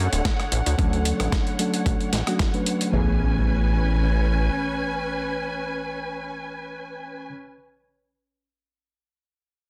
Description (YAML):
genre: nu-disco, nu disco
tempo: 112 BPM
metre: 4/4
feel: swing 54% on 16ths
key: A major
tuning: A4 = 440 Hz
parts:
  - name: dark symphonic string section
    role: sustained chords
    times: 0.0-7.3 s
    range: D3 to G#5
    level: -32 LUFS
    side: equal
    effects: sidechain pumping
  - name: chorused synth bass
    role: bass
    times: 0.0-4.5 s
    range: D1 to D2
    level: -24 LUFS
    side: equal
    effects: none
  - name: dusty soul sampler-style drum kit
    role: drums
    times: 0.1-2.9 s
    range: hi-hat, rim click, snare drum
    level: -30 LUFS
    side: equal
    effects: overdrive
  - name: electronic kick drum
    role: drums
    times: 0.2-2.5 s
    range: none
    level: -27 LUFS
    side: equal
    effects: overdrive
  - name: bright reed electric piano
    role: accompaniment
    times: 0.8-7.3 s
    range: E3 to B4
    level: -31 LUFS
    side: equal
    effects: low-pass filter, tape echo
  - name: impact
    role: sound effects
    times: 2.9-7.3 s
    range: none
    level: -35 LUFS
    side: equal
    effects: none
room: light reverb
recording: dense, heavily limited modern master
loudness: -24 LUFS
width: mono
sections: 0.0-2.9 A section; 2.9-7.2 B section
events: filter sweep on reed electric piano 0.0-2.9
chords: 0.0 Dmaj7; 2.9 Amaj9